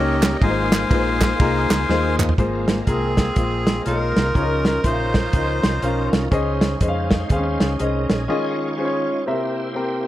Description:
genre	uptempo gospel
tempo	122 BPM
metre	4/4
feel	swing 62% on 8ths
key	Ab major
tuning	A4 = 439 Hz
part	melodica	melody	0.0-6.1 s	C4 to Ab5	-25 LUFS	left 4 dB	none
part	warm concert grand piano	accompaniment	0.0-10.1 s	Ab2 to G5	-23 LUFS	left 2 dB	none
part	bright tonewheel organ	sustained chords	0.0-10.1 s	Eb3 to Ab5	-30 LUFS	right 3 dB	fast rotary speaker, overdrive, chorus vibrato
part	hollow-body short-scale fingered electric bass	bass	0.0-8.3 s	Ab1 to F2	-24 LUFS	equal	none
part	warm soul drum kit	drums	0.2-8.2 s	hi-hat, kick drum, ride cymbal, snare drum, toms	-20 LUFS	right 1 dB	none
part	group handclap	percussion	0.2-2.3 s	none	-27 LUFS	right 4 dB	none
part	raspy alto saxophone	melody	2.9-6.1 s	Ab4 to C5	-26 LUFS	right 3 dB	none
room	light reverb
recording	none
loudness	-17 LUFS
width	side -14 dB against mid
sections	0.0-2.4 A section; 2.4-10.1 B section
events	drum fill 1.9-2.4; break 8.3-10.1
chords	0.4 Ab69; 4.4 Db69; 6.3 Bbm11/Db; 8.3 Eb9sus4; 9.3 C7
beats	| 0.41 0.91 1.40 1.89 | 2.38 2.87 3.37 3.86 | 4.35 4.84 5.34 5.83 | 6.32 6.81 7.30 7.80 | 8.29 8.78 9.27 9.75

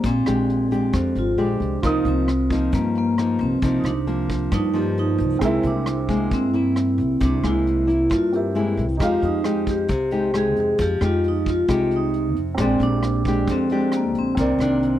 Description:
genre	bossa nova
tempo	134 BPM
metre	4/4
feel	straight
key	C minor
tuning	A4 = 442 Hz
part	vibraphone with medium mallets	melody	0.0-15.0 s	Bb3 to Ab4	-22 LUFS	right 1 dB	none
part	nylon-string guitar	accompaniment	0.0-15.0 s	F2 to G4	-24 LUFS	left 2 dB	none
part	upright bass	bass	0.0-15.0 s	Ab1 to G2	-25 LUFS	equal	none
part	vintage brush drum kit	drums	0.0-14.9 s	hi-hat, kick drum, rim click	-28 LUFS	equal	none
part	warm baby grand piano	accompaniment	1.8-15.0 s	C4 to Eb6	-29 LUFS	right 4 dB	none
room	little or no reverb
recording	dry, close 1970s-style studio recording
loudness	-18 LUFS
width	side -12 dB against mid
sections	0.0-15.0 A section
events	none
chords	0.0 Bb13; 1.8 Cm11; 5.4 C7b13; 9.0 Fm9; 12.6 Bb13; 14.4 Cm9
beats	| 0.04 0.49 0.94 1.38 | 1.83 2.28 2.73 3.17 | 3.62 4.07 4.52 4.97 | 5.41 5.86 6.31 6.76 | 7.21 7.65 8.10 8.55 | 9.00 9.45 9.89 10.34 | 10.79 11.24 11.69 12.13 | 12.58 13.03 13.48 13.93 | 14.38 14.82

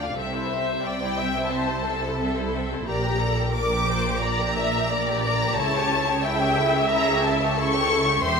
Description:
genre	classical, slow romantic movement for string orchestra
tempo	89 BPM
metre	4/4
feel	rubato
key	unclear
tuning	A4 = 439 Hz
part	clear symphonic violin section	melody	0.0-8.4 s	E5 to D6	-26 LUFS	left 3 dB	none
part	clear symphonic violin section	second line	0.0-8.4 s	C4 to F5	-29 LUFS	left 2 dB	none
part	rich symphonic viola section	accompaniment	0.0-8.4 s	G4 to E5	-27 LUFS	right 1 dB	none
part	rich symphonic cello section	bass	0.0-8.4 s	E2 to D3	-30 LUFS	right 3 dB	none
part	rich symphonic double bass section	bass	0.0-8.4 s	E1 to D2	-29 LUFS	right 2 dB	none
room	moderate scoring stage reverb, RT60 1.9 s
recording	minimal, uncompressed stereo recording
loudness	-21 LUFS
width	side -5 dB against mid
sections	0.0-8.4 A section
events	none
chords	0.2 Am/C; 2.9 Gm/Bb; 5.6 A7/C#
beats	| 0.17 0.85 1.52 2.20 | 2.88 3.54 4.23 4.90 | 5.57 6.23 6.90 7.58 | 8.24

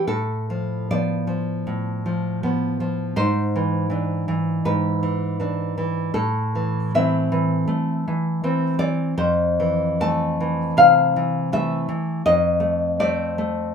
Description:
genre	romantic piece for solo classical guitar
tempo	79 BPM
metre	4/4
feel	uneven beats, rubato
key	unclear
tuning	A4 = 439 Hz
part	nylon-string guitar	solo	0.0-13.7 s	F2 to A5	-19 LUFS	equal	none
room	moderate studio reverb, RT60 0.6 s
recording	minimal, uncompressed stereo recording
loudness	-19 LUFS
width	side -6 dB against mid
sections	0.0-13.7 A section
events	none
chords	0.1 Bm7b5/A; 3.2 E7/G#; 6.1 Am; 9.2 Fmaj7; 12.2 F7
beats	| 0.08 0.91 1.67 2.43 | 3.17 3.92 4.66 5.39 | 6.14 6.94 7.69 8.43 | 9.17 10.01 10.77 11.50 | 12.24 12.98

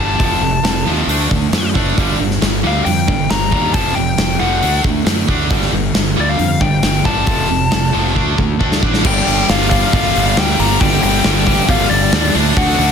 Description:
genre	hard rock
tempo	136 BPM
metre	4/4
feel	straight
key	G minor from 9.0 s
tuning	A4 = 440 Hz
part	biting lead guitar	melody	0.0-12.9 s	D5 to Bb5	-20 LUFS	left 5 dB	overdrive, digital delay
part	scooped high-gain guitar	riff	0.0-12.9 s	F2 to D4	-21 LUFS	left 13 dB	distortion
part	tight distorted guitar	riff	0.0-12.9 s	F2 to D4	-20 LUFS	right 14 dB	distortion
part	fuzz fingered electric bass	bass	0.0-12.9 s	F1 to F#2	-19 LUFS	equal	overdrive
part	big rock drum kit	drums	0.2-12.9 s	crash cymbal, hi-hat, kick drum, snare drum	-17 LUFS	equal	none
part	sludgy distorted guitar	riff	9.0-12.9 s	G2 to D4	-21 LUFS	left 2 dB	overdrive
part	octave-fuzz lead guitar	second line	9.1-12.9 s	D4 to Bb4	-27 LUFS	right 1 dB	none
room	small room ambience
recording	dense, heavily limited modern master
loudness	-12 LUFS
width	side -7 dB against mid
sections	0.0-9.0 A section; 9.0-12.9 B section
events	drum fill 8.2-9.0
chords	0.2 F; 1.1 D; 2.0 Gm; 3.7 F5; 4.6 D; 5.5 G5; 7.3 F; 8.2 D5; 9.0 Gm; 12.4 D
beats	| 0.20 0.64 1.08 1.52 | 1.97 2.41 2.85 3.29 | 3.74 4.18 4.62 5.07 | 5.51 5.95 6.39 6.84 | 7.28 7.72 8.16 8.61 | 9.05 9.49 9.93 10.37 | 10.81 11.25 11.70 12.14 | 12.58

